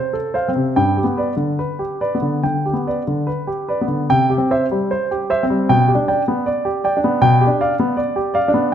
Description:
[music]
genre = classical, baroque-style suite movement for grand piano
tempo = 70-80 BPM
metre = 4/4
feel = rubato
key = unclear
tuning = A4 = 440 Hz
[part]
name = warm baby grand piano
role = solo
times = 0.0-8.7 s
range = G2 to G5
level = -16 LUFS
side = equal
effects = none
[sound]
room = moderate recital hall reverb, RT60 1.5 s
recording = none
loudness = -16 LUFS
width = side -9 dB against mid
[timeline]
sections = 0.0-8.7 A section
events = none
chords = 0.0 F; 0.8 G; 4.1 C; 5.7 G/B; 7.2 G7/B

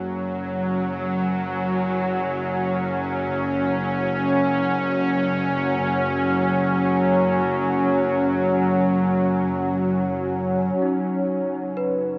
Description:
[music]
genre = ambient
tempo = free time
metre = none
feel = none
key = unclear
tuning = A4 = 440 Hz
[part]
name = dark studio double bass section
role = bass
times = 0.0-12.2 s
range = F#1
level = -28 LUFS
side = equal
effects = none
[part]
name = bowed-like drone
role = drone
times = 0.0-10.9 s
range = F#3 to C#4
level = -20 LUFS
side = equal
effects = built-in reverb
[part]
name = large celesta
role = arpeggios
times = 10.8-12.2 s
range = D#4 to B4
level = -27 LUFS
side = equal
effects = diffuse ambient delay
[sound]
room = wet huge ambient reverb, RT60 9.6 s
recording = cassette tape, small speaker sound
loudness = -19 LUFS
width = side -29 dB against mid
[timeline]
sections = 0.0-10.8 A section; 10.8-12.2 B section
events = fade-in on double bass section 0.0-10.8; fade-in on synth drone 0.0-10.8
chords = 0.0 F#5; 10.8 G#m7/F# (rootless)

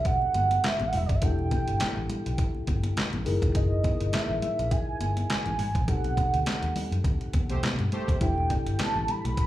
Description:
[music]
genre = early-eighties boogie funk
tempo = 103 BPM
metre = 4/4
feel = swing 56% on 16ths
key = E minor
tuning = A4 = 440 Hz
[part]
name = warm velvety synth lead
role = melody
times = 0.0-9.5 s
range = D5 to B5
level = -30 LUFS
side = right 3 dB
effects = chorus, slapback echo, tape echo
[part]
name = mellow tine electric piano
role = accompaniment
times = 0.0-9.5 s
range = C4 to A#4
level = -35 LUFS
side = left 4 dB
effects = medium stereo tremolo
[part]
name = vintage muted fingered electric bass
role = bass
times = 0.0-9.3 s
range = E1 to B2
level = -29 LUFS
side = equal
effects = none
[part]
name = detuned 8-bit digital drum machine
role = drums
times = 0.1-9.5 s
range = handclaps, hi-hat, kick drum, snare drum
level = -28 LUFS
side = equal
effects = none
[part]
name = congas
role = percussion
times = 0.2-9.2 s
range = none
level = -39 LUFS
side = left 2 dB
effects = none
[part]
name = analog synth brass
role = second line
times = 7.5-8.2 s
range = A3 to C5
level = -35 LUFS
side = right 2 dB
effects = chorus
[part]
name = mellow electric guitar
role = riff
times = 8.2-9.3 s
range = A3 to E4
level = -40 LUFS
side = right 4 dB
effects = lush chorus, slapback echo
[sound]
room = digital ambience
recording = live gig heard through the venue's PA, club reverb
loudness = -24 LUFS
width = side -14 dB against mid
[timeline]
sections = 0.0-9.5 A section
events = band accent 5.9-8.2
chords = 0.0 Em11; 3.3 F#13; 5.9 B7b9b13; 8.2 Em11

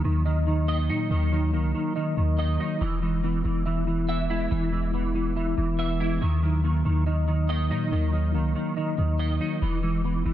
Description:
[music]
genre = hip hop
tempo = 141 BPM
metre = 4/4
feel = half-time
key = Eb phrygian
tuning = A4 = 440 Hz
[part]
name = mellow tine electric piano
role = accompaniment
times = 0.0-10.3 s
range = Eb3 to E5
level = -29 LUFS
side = left 2 dB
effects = medium stereo tremolo
[part]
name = semi-hollow electric guitar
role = arpeggios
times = 0.0-10.3 s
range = Eb3 to E5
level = -28 LUFS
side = right 3 dB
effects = ensemble chorus, digital delay
[part]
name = clean 808-style bass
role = bass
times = 0.0-10.3 s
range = E1 to Bb2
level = -26 LUFS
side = equal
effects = none
[sound]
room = little or no reverb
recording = none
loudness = -23 LUFS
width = side -12 dB against mid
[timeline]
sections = 0.0-10.3 A section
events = none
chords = 0.0 Ebm; 2.8 E; 6.2 Ebm; 9.6 E

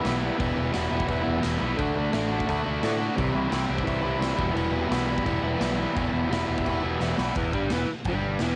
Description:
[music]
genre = garage rock duo or trio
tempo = 172 BPM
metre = 4/4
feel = straight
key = E minor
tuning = A4 = 440 Hz
[part]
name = crunchy overdriven guitar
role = riff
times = 0.0-8.6 s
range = E2 to F#4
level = -28 LUFS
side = equal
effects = cassette tape
[part]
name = raw garage drum kit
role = drums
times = 0.0-8.5 s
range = crash cymbal, kick drum, snare drum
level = -34 LUFS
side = equal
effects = cassette tape
[part]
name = growling picked electric bass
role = bass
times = 0.1-8.6 s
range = E1 to A2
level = -33 LUFS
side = equal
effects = overdrive
[sound]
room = light reverb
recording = home recording on cassette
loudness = -26 LUFS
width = mono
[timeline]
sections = 0.0-7.4 A section; 7.4-8.6 B section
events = drum fill 7.0-7.4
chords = 0.0 Em; 1.8 D; 3.2 C; 4.4 Em

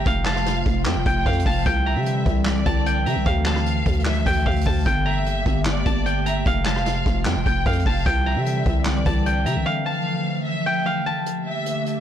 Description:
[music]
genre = hip hop, trap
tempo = 150 BPM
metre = 4/4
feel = half-time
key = G dorian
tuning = A4 = 441 Hz
[part]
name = steel-string zither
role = melody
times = 0.0-12.0 s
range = F4 to Bb5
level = -26 LUFS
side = equal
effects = low-pass filter, ping-pong delay
[part]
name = rich studio violin section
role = second line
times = 0.0-12.0 s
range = D5 to G5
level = -30 LUFS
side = left 1 dB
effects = ping-pong delay
[part]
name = warbly tape-like pad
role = sustained chords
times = 0.0-12.0 s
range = C3 to G4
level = -27 LUFS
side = equal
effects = chorus, built-in reverb
[part]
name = growling 808-style bass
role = bass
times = 0.0-9.7 s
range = F1 to C3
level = -23 LUFS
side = equal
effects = tube saturation
[part]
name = vintage brush drum kit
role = drums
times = 0.1-12.0 s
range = handclaps, hi-hat, kick drum, rim click, snare drum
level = -24 LUFS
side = equal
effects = none
[sound]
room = little or no reverb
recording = blown-out, overdriven recording, overdrive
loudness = -19 LUFS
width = side -10 dB against mid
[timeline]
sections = 0.0-11.3 A section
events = break 9.7-11.3, 11.3-12.0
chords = 0.1 F; 1.7 Cadd9; 3.3 Dmadd9; 4.9 Gmadd9; 6.5 F; 8.1 Cadd9; 9.7 Dmadd9; 11.3 Gmadd9

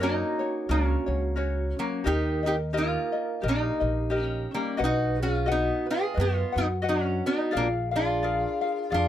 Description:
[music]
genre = Hawaiian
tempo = 88 BPM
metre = 4/4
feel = swing 56% on 8ths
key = Eb minor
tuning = A4 = 439 Hz
[part]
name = lap resonator guitar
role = melody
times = 0.0-9.1 s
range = Gb3 to Ab4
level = -28 LUFS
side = equal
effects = none
[part]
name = vibraphone with soft mallets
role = second line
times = 0.0-9.1 s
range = Db4 to B4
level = -33 LUFS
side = right 3 dB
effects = none
[part]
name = ukulele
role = accompaniment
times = 0.0-9.1 s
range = Db4 to F#5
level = -31 LUFS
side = left 5 dB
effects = none
[part]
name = upright bass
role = bass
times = 0.0-9.1 s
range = Bb1 to Gb2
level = -28 LUFS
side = equal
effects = none
[sound]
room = little or no reverb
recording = none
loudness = -24 LUFS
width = side -11 dB against mid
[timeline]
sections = 0.0-9.1 A section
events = none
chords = 0.0 Gb; 2.1 Eb; 4.8 B; 7.5 Bb7

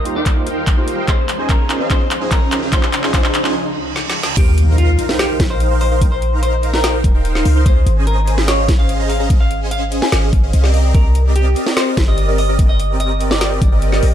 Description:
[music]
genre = future bass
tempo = 146 BPM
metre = 4/4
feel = half-time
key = Eb major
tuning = A4 = 440 Hz
[part]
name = semi-hollow electric guitar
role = melody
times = 0.0-13.5 s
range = F4 to Ab5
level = -23 LUFS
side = left 2 dB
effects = sidechain pumping, ping-pong delay
[part]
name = overdriven tine electric piano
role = accompaniment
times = 0.0-3.5 s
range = Bb3 to C5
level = -25 LUFS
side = right 4 dB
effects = phaser, sidechain pumping, tape echo
[part]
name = shimmering ambient pad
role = sustained chords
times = 0.0-4.4 s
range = Db2 to C5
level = -29 LUFS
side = equal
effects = chorus, built-in reverb, sidechain pumping
[part]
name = supersaw chords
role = riff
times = 0.0-14.0 s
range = C4 to C6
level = -21 LUFS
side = right 1 dB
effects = phaser, sidechain pumping, low-pass filter
[part]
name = riser, reverse cymbal and impact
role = sound effects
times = 0.9-6.0 s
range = none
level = -26 LUFS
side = right 1 dB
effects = none
[part]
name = trap drum kit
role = drums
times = 0.1-14.1 s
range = crash cymbal, handclaps, hi-hat, snare drum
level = -21 LUFS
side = equal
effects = high-pass filter on snare, high-pass filter on toms, high-pass filter on hats, high-pass filter on cymbals
[part]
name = electronic kick drum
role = drums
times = 0.3-13.7 s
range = none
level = -14 LUFS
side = equal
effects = none
[part]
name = warm 808-style bass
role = bass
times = 4.4-14.1 s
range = Eb1 to Eb2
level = -15 LUFS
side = equal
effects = sidechain pumping
[sound]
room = light reverb, digital ambience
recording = dark, warm production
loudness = -13 LUFS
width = side -10 dB against mid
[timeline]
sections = 0.0-4.4 A section; 4.4-14.1 B section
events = build-up 0.0-4.4; drum fill 0.0-3.5, 4.0-4.4; riser 0.9-3.5; break 3.5-4.4; reverse cymbal 3.5-4.4; drop 4.4-14.1; impact 4.4-6.0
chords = 0.0 Eb6; 1.1 Dbmaj7; 4.2 Eb6; 7.7 Dbmaj7; 10.7 Cm7

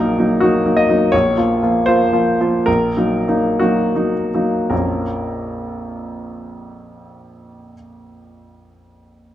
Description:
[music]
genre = classical, romantic character piece for solo piano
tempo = 51-85 BPM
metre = 2/4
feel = rubato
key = Bb minor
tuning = A4 = 440 Hz
[part]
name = clear baby grand piano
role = solo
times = 0.0-9.3 s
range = Bb1 to Eb5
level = -15 LUFS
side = equal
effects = none
[sound]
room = moderate recital hall reverb, RT60 1.4 s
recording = dark, warm production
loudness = -14 LUFS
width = side -12 dB against mid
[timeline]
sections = 0.0-4.7 A section; 4.7-9.2 B section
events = slowing down 0.4-4.7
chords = 0.0 Ebm/Bb; 1.1 Bbm; 2.7 Ebm/Bb; 4.7 Bbm

